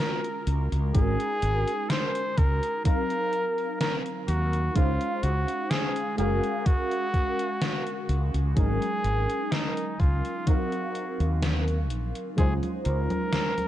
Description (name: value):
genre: vaporwave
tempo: 63 BPM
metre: 4/4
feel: straight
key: Eb dorian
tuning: A4 = 440 Hz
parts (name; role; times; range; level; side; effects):
- clear flugelhorn; melody; 0.0-13.7 s; Eb4 to C5; -30 LUFS; equal; tape echo
- mellow FM electric piano; accompaniment; 0.0-13.7 s; Gb3 to F5; -31 LUFS; equal; ensemble chorus
- gated 80s digital drum machine; drums; 0.2-13.7 s; congas, hi-hat, snare drum; -31 LUFS; equal; gated reverb, gated reverb snare, overdrive
- mellow fretless electric bass; bass; 0.5-13.1 s; Gb1 to Eb2; -26 LUFS; equal; none
- electronic kick drum; drums; 1.0-12.6 s; none; -23 LUFS; equal; overdrive
room: light reverb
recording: cassette tape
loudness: -24 LUFS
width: side -12 dB against mid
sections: 0.0-13.7 A section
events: none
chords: 0.0 Gbmaj7; 0.9 Ab7sus4; 2.9 Ebm69; 4.8 Dbmaj7; 6.2 Gbmaj7; 8.6 Ab7sus4; 10.5 Ebm69; 12.4 Dbmaj7